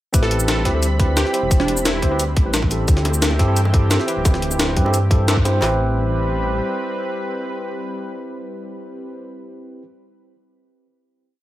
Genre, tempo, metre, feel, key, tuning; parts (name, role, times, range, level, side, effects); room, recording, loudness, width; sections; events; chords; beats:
liquid drum and bass; 175 BPM; 4/4; straight; A minor; A4 = 441 Hz
bright tine electric piano; accompaniment; 0.1-9.8 s; C4 to C5; -24 LUFS; right 1 dB; tape echo
lush unison pad; sustained chords; 0.1-9.1 s; E3 to B5; -28 LUFS; equal; chorus, sidechain pumping
dark detuned saw bass; bass; 0.1-6.6 s; D1 to G2; -20 LUFS; equal
breakbeat sampler-style drum kit; drums; 0.1-5.5 s; hi-hat, shaker, snare drum; -22 LUFS; left 1 dB; small room ambience
garage drum kit; drums; 0.1-5.7 s; handclaps, kick drum, snare drum; -17 LUFS; equal; small room ambience
plucky unison lead; melody; 0.2-2.2 s; D4 to A4; -27 LUFS; right 2 dB; phaser, tape echo
bongos; percussion; 3.1-5.5 s; -32 LUFS; right 1 dB
light reverb; -16 LUFS; side -14 dB against mid
0.1-5.6 drop; 5.6-8.4 final chord
drop 0.1-5.6; band accent 5.3
0.1 Am9; 2.9 D9sus4; 5.6 Am9
| 0.14 0.48 0.82 1.17 | 1.51 1.85 2.19 2.54 | 2.88 3.22 3.57 3.91 | 4.25 4.59 4.94 5.28 | 5.62 5.97 6.31 6.65 | 7.00 7.34 7.68 8.02